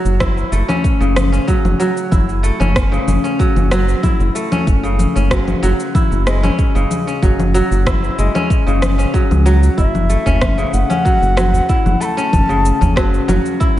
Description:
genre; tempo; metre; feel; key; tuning
organic downtempo; 94 BPM; 4/4; straight; F# minor; A4 = 440 Hz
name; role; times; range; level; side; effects
kora; arpeggios; 0.0-13.8 s; C#3 to E4; -18 LUFS; equal; tape echo, slapback echo
round analog bass; bass; 0.0-13.8 s; F#1 to C#2; -16 LUFS; equal; sidechain pumping
electronic cabasa, rim click and congas; drums; 0.1-13.8 s; none; -21 LUFS; left 1 dB; overdrive, small room ambience
electronic kick drum; drums; 0.2-13.7 s; none; -16 LUFS; equal; small room ambience
bansuri; melody; 9.8-13.3 s; E5 to B5; -20 LUFS; left 2 dB; tape echo, slapback echo
udu; percussion; 10.3-12.9 s; none; -21 LUFS; right 1 dB; none
room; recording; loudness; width
moderate concert hall reverb, RT60 2.3 s; big arena sound, nothing above 10.5 kHz; -12 LUFS; side -13 dB against mid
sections
0.0-13.8 A section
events
none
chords
0.0 F#m; 4.7 C#m/F#; 9.8 F#m

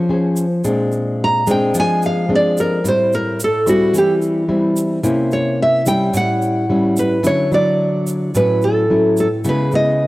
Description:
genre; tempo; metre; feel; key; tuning
bossa nova; 109 BPM; 4/4; straight; unclear; A4 = 440 Hz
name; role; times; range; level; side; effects
nylon-string guitar; accompaniment; 0.0-10.1 s; A2 to C5; -17 LUFS; left 1 dB; none
tube shaker; percussion; 0.4-10.0 s; none; -30 LUFS; right 3 dB; none
nylon-string guitar; melody; 1.2-10.1 s; Gb4 to Bb5; -16 LUFS; right 1 dB; cassette tape
room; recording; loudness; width
light reverb, small room ambience; home recording on cassette; -14 LUFS; side -18 dB against mid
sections
0.0-7.2 A section; 7.2-10.1 B section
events
nylon-string guitar solo 0.0-7.2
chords
0.0 Bbm9 (rootless); 0.6 Bb9; 2.8 Am7; 5.0 C7b9; 6.1 A7; 7.2 Dmaj9; 9.4 C#m7

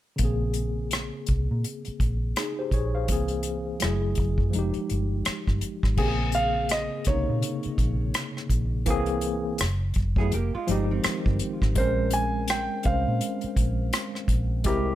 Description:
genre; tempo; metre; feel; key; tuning
R&B, neo-soul; 83 BPM; 4/4; swing 59% on 16ths; Bb dorian; A4 = 438 Hz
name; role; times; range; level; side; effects
barky tine electric piano; accompaniment; 0.2-14.9 s; C3 to F5; -30 LUFS; left 1 dB; overdrive, fast stereo tremolo
vintage muted fingered electric bass; bass; 0.2-14.9 s; F1 to Bb2; -27 LUFS; equal; none
unplugged drum kit; drums; 0.2-14.8 s; crash cymbal, hi-hat, kick drum, rim click; -27 LUFS; equal; none
warm concert grand piano; melody; 6.0-14.9 s; G4 to Ab5; -28 LUFS; right 1 dB; none
hollow-body jazz guitar; second line; 10.2-11.7 s; Eb3 to Ab4; -34 LUFS; right 5 dB; tape echo
room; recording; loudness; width
light reverb; none; -24 LUFS; side -13 dB against mid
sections
0.2-6.0 A section; 6.0-14.9 B section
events
none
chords
0.2 Bbm9; 3.1 C7b13; 3.8 Gbm9; 4.5 Fm9; 6.0 Bbm9; 8.9 C7b13; 9.6 Gbm9; 10.3 Fm9; 11.8 Bbm9

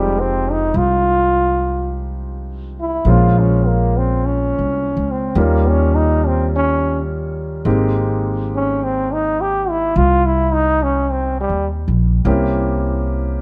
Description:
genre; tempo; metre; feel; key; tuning
jazz ballad; 52 BPM; 4/4; swing 68% on 8ths; F minor; A4 = 442 Hz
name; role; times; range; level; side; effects
clear trombone; melody; 0.0-11.7 s; G3 to G4; -20 LUFS; equal; none
warm concert grand piano; accompaniment; 0.0-13.4 s; F3 to C5; -25 LUFS; equal; none
upright bass; bass; 0.0-13.4 s; F1 to Eb2; -20 LUFS; equal; none
room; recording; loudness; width
light reverb; none; -17 LUFS; mono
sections
0.0-13.4 A section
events
trombone solo 0.0-13.4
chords
0.0 Fm9; 3.1 Bbm9; 5.4 Eb9; 7.7 Abmaj7; 12.3 C7b9

